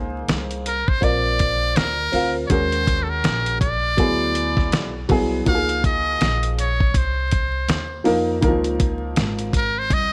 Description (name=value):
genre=hip hop, jazz-hop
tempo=81 BPM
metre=4/4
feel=swing 60% on 16ths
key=Db major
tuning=A4 = 445 Hz
part: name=warm upright piano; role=accompaniment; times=0.0-9.6 s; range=Eb3 to F5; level=-26 LUFS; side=equal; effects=none
part: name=upright bass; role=bass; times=0.0-10.1 s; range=Ab1 to F2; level=-28 LUFS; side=equal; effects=none
part: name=dusty soul sampler-style drum kit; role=drums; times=0.3-10.1 s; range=hi-hat, kick drum, snare drum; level=-24 LUFS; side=equal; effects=none
part: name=trumpet with metal mute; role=melody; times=0.7-10.1 s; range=A4 to F5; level=-25 LUFS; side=equal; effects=none
room=light reverb, studio reverb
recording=vinyl crackle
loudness=-21 LUFS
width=mono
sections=0.0-10.1 A section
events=none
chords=0.0 Db5; 1.0 Bb; 2.5 Ebm7; 4.0 D7#11; 5.5 Dbmaj7